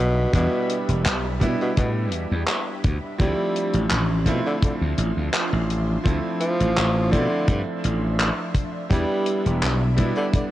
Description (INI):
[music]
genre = vaporwave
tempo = 84 BPM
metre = 4/4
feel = straight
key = D dorian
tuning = A4 = 440 Hz
[part]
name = warm tenor saxophone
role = melody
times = 0.0-10.5 s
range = B2 to G3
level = -27 LUFS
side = equal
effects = tape echo
[part]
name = bright electric grand piano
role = accompaniment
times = 0.0-10.5 s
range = F3 to E4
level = -27 LUFS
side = right 2 dB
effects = lush chorus, tape echo
[part]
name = soft string machine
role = sustained chords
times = 0.0-10.5 s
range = F3 to C6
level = -34 LUFS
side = equal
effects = phaser, ensemble chorus, vintage 12-bit sampler grit
[part]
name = slap bass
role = bass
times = 0.0-10.4 s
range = E1 to B2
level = -22 LUFS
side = equal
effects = none
[part]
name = damped 70s drum kit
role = drums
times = 0.3-10.5 s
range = handclaps, hi-hat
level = -27 LUFS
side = equal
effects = none
[part]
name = kick drum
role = drums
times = 0.3-10.5 s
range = none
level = -21 LUFS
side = equal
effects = none
[sound]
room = light reverb, small room ambience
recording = cassette tape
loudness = -20 LUFS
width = side -14 dB against mid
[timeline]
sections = 0.0-10.5 A section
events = none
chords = 0.0 Em7; 3.2 Dm9; 8.9 Em7